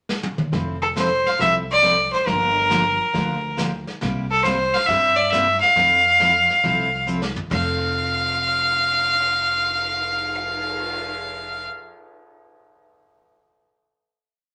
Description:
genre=country, western swing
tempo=137 BPM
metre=4/4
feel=swing 68% on 8ths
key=F major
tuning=A4 = 441 Hz
part: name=jazz brush drum kit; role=drums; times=0.1-10.9 s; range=brushed snare drum, crash cymbal, cymbal swell, hi-hat, kick drum, snare drum, toms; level=-33 LUFS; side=equal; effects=none
part: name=picked steel-string acoustic guitar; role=accompaniment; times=0.5-11.7 s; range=C3 to A4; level=-31 LUFS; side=equal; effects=none
part: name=upright bass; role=bass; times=0.5-11.7 s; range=F1 to G2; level=-33 LUFS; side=equal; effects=none
part: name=clear fiddle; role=melody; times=0.8-11.7 s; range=A4 to F5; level=-20 LUFS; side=equal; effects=none
room=wet large studio reverb, RT60 0.8 s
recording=none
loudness=-20 LUFS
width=mono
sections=0.0-0.5 pickup bar; 0.5-7.5 A section; 7.5-11.0 final chord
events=drum fill 0.1-0.5, 7.1-7.5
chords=0.0 N.C.; 0.5 Fmaj7; 2.3 Gm7; 4.0 C7; 5.8 Fmaj7; 7.5 F

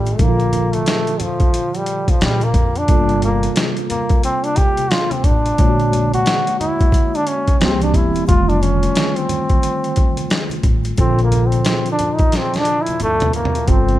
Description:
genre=hip hop, jazz-hop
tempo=89 BPM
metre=4/4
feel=swing 61% on 16ths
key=unclear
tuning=A4 = 441 Hz
part: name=bright trombone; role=melody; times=0.0-14.0 s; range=F3 to G4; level=-20 LUFS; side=equal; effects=digital delay
part: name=mellow tine electric piano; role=accompaniment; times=0.0-14.0 s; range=Bb2 to C#5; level=-22 LUFS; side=right 1 dB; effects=medium stereo tremolo
part: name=upright bass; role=bass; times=0.0-14.0 s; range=E1 to Bb2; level=-20 LUFS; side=equal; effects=none
part: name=boom bap sampler-style drum kit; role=drums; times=0.1-14.0 s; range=hi-hat, kick drum, snare drum, toms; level=-17 LUFS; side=equal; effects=none
part: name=egg shaker and congas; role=percussion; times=0.1-13.7 s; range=none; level=-31 LUFS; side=left 2 dB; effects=none
room=light reverb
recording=none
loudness=-14 LUFS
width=side -14 dB against mid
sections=0.0-13.7 A section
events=trombone solo 0.0-13.7; drum fill 12.3-13.7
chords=0.2 Bbmaj7; 2.9 Gm11; 5.6 Bb7alt; 7.6 C7; 8.3 F13; 11.0 Bbmaj7

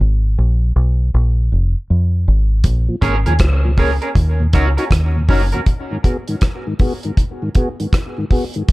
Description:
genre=dub reggae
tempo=79 BPM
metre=4/4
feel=swing 64% on 16ths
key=unclear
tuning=A4 = 440 Hz
part: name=deep dub fingered electric bass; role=bass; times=0.0-5.5 s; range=F1 to F2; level=-14 LUFS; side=equal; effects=none
part: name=damped 70s drum kit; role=drums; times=2.6-8.7 s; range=hi-hat, kick drum, rim click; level=-16 LUFS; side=equal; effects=none
part: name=mellow tonewheel organ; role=accompaniment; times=2.9-8.6 s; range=Eb2 to Ab4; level=-23 LUFS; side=left 1 dB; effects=chorus vibrato, slow rotary speaker, tape echo
part: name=electric guitar at the edge of break-up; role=accompaniment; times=3.0-5.6 s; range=Db4 to Bb4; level=-23 LUFS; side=right 2 dB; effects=lush chorus, tape echo
room=small room ambience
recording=dark, warm production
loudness=-14 LUFS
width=side -20 dB against mid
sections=0.0-2.6 A section; 2.6-8.7 B section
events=break 0.0-2.6, 5.7-8.7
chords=0.0 N.C.; 1.1 Bb5; 2.6 Bbm7; 4.2 Ebm7; 5.7 Abm7

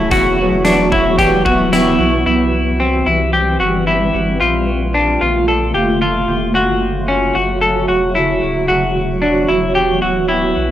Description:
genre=dream pop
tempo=112 BPM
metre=4/4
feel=straight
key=C lydian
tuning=A4 = 440 Hz
part: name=electric guitar at the edge of break-up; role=accompaniment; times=0.0-2.3 s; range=E3 to A4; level=-20 LUFS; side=right 4 dB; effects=tremolo, analog chorus
part: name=granular cloud pad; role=sustained chords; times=0.0-10.7 s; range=C#3 to G4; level=-17 LUFS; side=right 1 dB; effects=built-in reverb
part: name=semi-hollow electric guitar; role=arpeggios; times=0.0-10.7 s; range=C4 to A4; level=-15 LUFS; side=left 1 dB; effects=lush chorus, tape echo
part: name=warm sub bass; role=bass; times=0.0-10.7 s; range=C#1 to C2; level=-22 LUFS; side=equal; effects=none
part: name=huge arena drum kit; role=drums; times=0.1-1.9 s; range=hi-hat, kick drum, snare drum, tambourine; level=-22 LUFS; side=equal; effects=none
room=light reverb, studio reverb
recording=dry, gritty hardware recording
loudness=-12 LUFS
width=side -12 dB against mid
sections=0.0-2.3 A section; 2.3-10.7 B section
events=none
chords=0.1 Esus2; 2.3 C; 4.4 Bbmaj7; 6.5 F#m; 8.7 Esus2

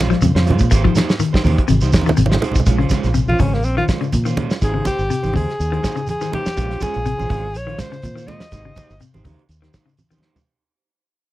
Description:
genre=afrobeat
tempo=123 BPM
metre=4/4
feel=swing 54% on 16ths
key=unclear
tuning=A4 = 440 Hz
part: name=electric guitar at the edge of break-up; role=stabs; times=0.0-10.4 s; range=Ab3 to C5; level=-26 LUFS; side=right 6 dB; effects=spring reverb
part: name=fingered electric bass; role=bass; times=0.0-10.4 s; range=G1 to Bb2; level=-19 LUFS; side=equal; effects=none
part: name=congas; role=percussion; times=0.0-10.5 s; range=none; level=-23 LUFS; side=right 3 dB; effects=none
part: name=clean electric guitar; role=arpeggios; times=0.1-10.3 s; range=C3 to F3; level=-22 LUFS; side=left 5 dB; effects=none
part: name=warm soul drum kit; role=drums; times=0.1-10.5 s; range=hi-hat, kick drum, snare drum, toms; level=-19 LUFS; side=equal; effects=none
part: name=shekere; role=percussion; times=0.1-10.5 s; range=none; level=-28 LUFS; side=right 2 dB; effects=none
part: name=clear alto saxophone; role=melody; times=3.3-9.0 s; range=Bb3 to Eb5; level=-24 LUFS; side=left 1 dB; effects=none
room=little or no reverb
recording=dry, close 1970s-style studio recording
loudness=-15 LUFS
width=side -16 dB against mid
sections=0.0-2.7 A section; 2.7-10.5 B section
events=drum fill 1.9-2.7, 10.1-10.5; fade-out 2.7-10.5; alto saxophone solo 2.7-10.5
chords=0.0 Bbm9; 0.7 Abmaj9; 2.7 Bbm9; 4.6 Abmaj9; 6.6 Bbm9; 8.5 Abmaj9

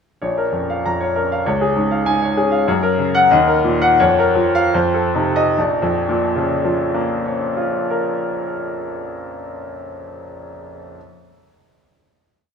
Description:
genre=classical, virtuoso piano study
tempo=70-99 BPM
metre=2/4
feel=rubato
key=Bb minor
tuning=A4 = 440 Hz
part: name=clear concert grand piano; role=solo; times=0.2-11.0 s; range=Bb1 to Bb5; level=-16 LUFS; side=left 1 dB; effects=none
room=wet concert hall reverb, RT60 2.2 s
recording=none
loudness=-15 LUFS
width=side -6 dB against mid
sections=0.2-5.6 A section; 5.6-8.8 final chord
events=slowing down 2.1-5.6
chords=0.2 Bbm; 1.5 Db; 2.7 Gb; 3.3 Ebm; 4.0 Bbm/F; 4.7 F7; 5.6 Bbm

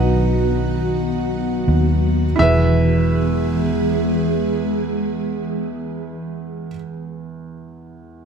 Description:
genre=pop ballad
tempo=43 BPM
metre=4/4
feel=straight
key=E major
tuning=A4 = 438 Hz
part: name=clear baby grand piano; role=melody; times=0.0-6.7 s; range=D#5 to E5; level=-24 LUFS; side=equal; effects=none
part: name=felt-muted upright piano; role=accompaniment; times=0.0-8.2 s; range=E2 to F#5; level=-24 LUFS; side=right 4 dB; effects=none
part: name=ethereal airy pad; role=sustained chords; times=0.0-6.7 s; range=D#3 to G#4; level=-21 LUFS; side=equal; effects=ensemble chorus, built-in reverb
part: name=vintage muted fingered electric bass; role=bass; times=0.0-6.7 s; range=E1 to D#2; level=-20 LUFS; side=equal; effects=none
room=light reverb, small room ambience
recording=none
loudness=-16 LUFS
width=side -6 dB against mid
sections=0.0-2.4 A section; 2.4-8.0 B section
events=slowing down 0.0-2.4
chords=0.0 B; 2.4 E

